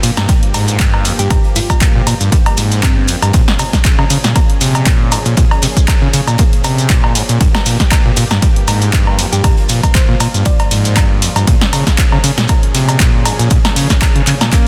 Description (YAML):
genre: acid house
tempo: 118 BPM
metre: 4/4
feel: swing 55% on 16ths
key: G phrygian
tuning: A4 = 441 Hz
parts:
  - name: lush unison pad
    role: sustained chords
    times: 0.0-14.7 s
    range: G2 to Ab4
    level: -26 LUFS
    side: equal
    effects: chorus, sidechain pumping
  - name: overdriven acid bass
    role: riff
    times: 0.0-14.7 s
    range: F2 to Bb3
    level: -18 LUFS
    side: equal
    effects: sidechain pumping
  - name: oversized low-tuned drum kit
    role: drums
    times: 0.0-14.7 s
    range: hi-hat, snare drum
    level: -33 LUFS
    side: equal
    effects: none
  - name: punchy analog drum machine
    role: drums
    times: 0.0-14.6 s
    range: cowbell, handclaps, hi-hat, ride cymbal, snare drum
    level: -19 LUFS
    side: equal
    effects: none
  - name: maracas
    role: percussion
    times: 0.0-14.6 s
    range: none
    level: -25 LUFS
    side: equal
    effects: none
  - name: electronic kick drum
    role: drums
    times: 0.3-14.6 s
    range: none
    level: -14 LUFS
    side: equal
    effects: none
  - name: thumb-piano-like synth pluck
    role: melody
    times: 1.2-3.0, 9.3-11.0 s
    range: C4 to D5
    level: -27 LUFS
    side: equal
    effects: chorus, phaser, tape echo
room: light reverb, small room ambience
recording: dense, heavily limited modern master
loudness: -12 LUFS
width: mono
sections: 0.0-14.7 A section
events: none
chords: 0.0 Gm7; 3.3 Bbm7; 7.4 Gm7; 11.5 Bbm7